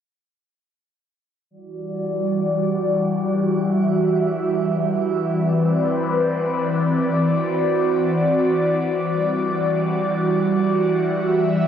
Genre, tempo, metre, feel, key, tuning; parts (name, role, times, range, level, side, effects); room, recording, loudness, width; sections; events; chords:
hip hop; free time; E minor; A4 = 438 Hz
airy breathy pad; solo; 1.7-11.7 s; E3 to E5; -18 LUFS; equal; chorus, phaser, low-pass filter
moderate shimmer reverb, RT60 8.6 s; dark, warm production; -18 LUFS; side -8 dB against mid
1.5-11.7 A section
filter sweep on analog synth pad 1.5-11.7
1.5 Em9; 5.3 Cmaj9; 7.2 D9; 9.1 Em9